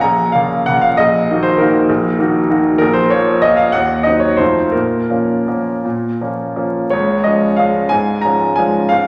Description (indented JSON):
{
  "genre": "classical, piano waltz",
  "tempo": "157-209 BPM",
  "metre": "3/4",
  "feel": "rubato",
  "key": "Bb minor",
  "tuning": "A4 = 441 Hz",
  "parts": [
    { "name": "bright concert grand piano", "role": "solo", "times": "0.0-9.1 s", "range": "Bb1 to Bb5", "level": "-15 LUFS", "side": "equal", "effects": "none" }
  ],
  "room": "wet recital hall reverb, RT60 1.5 s",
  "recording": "vinyl crackle",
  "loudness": "-15 LUFS",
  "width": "mono",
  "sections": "0.0-6.9 A section; 6.9-9.1 B section",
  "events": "none",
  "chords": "0.0 Bbm; 1.0 Ebm/Bb; 2.8 Bbm; 3.7 Cdim/Eb; 4.4 F7; 4.7 Bbm; 6.9 Db"
}